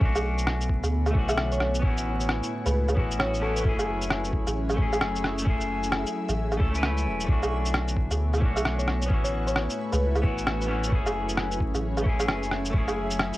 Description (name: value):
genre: future garage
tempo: 132 BPM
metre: 4/4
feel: swing 62% on 16ths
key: F# minor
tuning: A4 = 440 Hz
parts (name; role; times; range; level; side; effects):
- clean electric guitar; accompaniment; 0.0-13.4 s; A3 to B4; -31 LUFS; left 2 dB; sidechain pumping, cassette tape, analog delay
- airy breathy pad; sustained chords; 0.1-13.4 s; A2 to E5; -35 LUFS; equal; chorus, phaser, vintage 12-bit sampler grit, sidechain pumping, cassette tape
- soft dub sub bass; bass; 0.0-13.3 s; E1 to D2; -28 LUFS; equal; sidechain pumping
- electronic kick drum; drums; 0.0-12.9 s; none; -25 LUFS; equal; cassette tape
- backwards swelling texture; texture; 0.4-13.4 s; E4; -42 LUFS; equal; none
- electronic shaker, woodblock and rim click; drums; 0.2-13.4 s; none; -28 LUFS; right 1 dB; cassette tape
- thumb-piano-like synth pluck; melody; 1.3-3.7, 8.6-10.2 s; A4 to E5; -34 LUFS; equal; chorus, cassette tape, analog delay
room: light reverb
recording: home recording on cassette, vinyl crackle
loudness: -23 LUFS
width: side -17 dB against mid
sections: 0.0-13.4 A section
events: none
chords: 0.0 Bm7; 1.8 A6; 3.6 F#m7; 7.3 Bm7; 9.1 A6; 10.9 F#m7